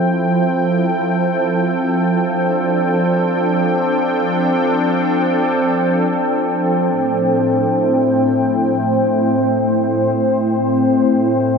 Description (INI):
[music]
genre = ambient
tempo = free time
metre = none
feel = none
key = unclear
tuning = A4 = 443 Hz
[part]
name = warm analog pad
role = sustained chords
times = 0.0-11.6 s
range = A2 to G5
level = -16 LUFS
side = equal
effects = chorus
[part]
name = glass harmonica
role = texture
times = 0.0-11.6 s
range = C4 to C5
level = -20 LUFS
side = equal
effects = none
[sound]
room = wet huge ambient reverb, RT60 8.7 s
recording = dark, warm production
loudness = -14 LUFS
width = side -5 dB against mid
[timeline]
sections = 0.0-6.9 A section; 6.9-11.6 B section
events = fade-in on glass harmonica 0.0-6.9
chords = 0.0 Fmaj7; 6.9 Am7